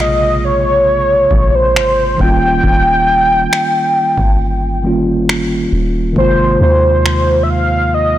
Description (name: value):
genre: contemporary R&B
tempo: 68 BPM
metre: 4/4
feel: straight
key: unclear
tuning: A4 = 440 Hz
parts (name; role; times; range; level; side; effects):
- warm velvety synth lead; melody; 0.0-8.2 s; C5 to G5; -13 LUFS; equal; chorus
- mellow tine electric piano; accompaniment; 0.0-8.2 s; C3 to Ab4; -17 LUFS; right 1 dB; medium stereo tremolo
- soft 808-style bass; bass; 0.0-8.2 s; Eb1 to Eb2; -18 LUFS; equal; none
- booming analog drum machine; drums; 0.0-7.3 s; finger snaps, kick drum; -18 LUFS; equal; soft clipping on snare
room: light reverb, digital ambience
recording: blown-out, overdriven recording, overdrive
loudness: -10 LUFS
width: side -13 dB against mid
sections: 0.0-8.2 A section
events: break 0.0-8.2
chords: 0.0 Bbm9; 2.2 Eb7; 6.2 Ab69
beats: 0.87 1.75 | 2.63 3.51 4.40 5.28 | 6.16 7.04 7.92